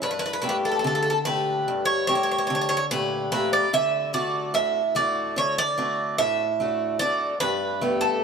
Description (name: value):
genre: greek folk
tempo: 146 BPM (eighths)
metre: 9/8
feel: straight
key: unclear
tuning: A4 = 438 Hz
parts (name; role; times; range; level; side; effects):
- Greek bouzouki; melody; 0.0-8.2 s; A4 to E5; -23 LUFS; right 2 dB; none
- picked acoustic archtop guitar; accompaniment; 0.0-8.2 s; G2 to G4; -26 LUFS; left 2 dB; none
room: moderate plate reverb, RT60 2.7 s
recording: heard from further back in the room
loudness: -22 LUFS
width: side -6 dB against mid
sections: 0.0-8.2 A section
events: none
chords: 0.0 Gmadd9; 3.7 D; 7.4 Gadd9